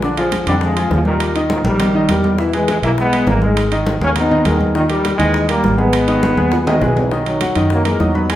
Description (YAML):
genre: latin, salsa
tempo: 203 BPM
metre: 4/4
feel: straight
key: G# harmonic minor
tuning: A4 = 440 Hz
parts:
  - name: bright trombone section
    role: melody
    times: 0.0-8.4 s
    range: A#2 to D#4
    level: -18 LUFS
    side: equal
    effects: none
  - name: clear grand piano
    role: accompaniment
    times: 0.0-8.4 s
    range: D3 to D#6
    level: -19 LUFS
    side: left 1 dB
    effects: none
  - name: fingered electric bass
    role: bass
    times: 0.0-8.4 s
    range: G#1 to F#2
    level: -20 LUFS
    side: equal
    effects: none
  - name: bongos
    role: percussion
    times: 0.0-8.4 s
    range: none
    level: -29 LUFS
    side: left 3 dB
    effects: none
  - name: congas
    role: percussion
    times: 0.0-8.4 s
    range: none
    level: -22 LUFS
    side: equal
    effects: none
  - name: timbales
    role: percussion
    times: 0.2-8.4 s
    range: none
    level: -26 LUFS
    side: right 6 dB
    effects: none
room: wet large studio reverb, RT60 0.8 s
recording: band playing live in one room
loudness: -13 LUFS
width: side -13 dB against mid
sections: 0.0-7.1 A section; 7.1-8.4 B section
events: drum fill 6.4-7.1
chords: 0.0 A#7; 1.2 D#; 2.4 E; 3.6 G#madd9; 4.8 D#; 5.9 G#m; 7.1 Bmaj7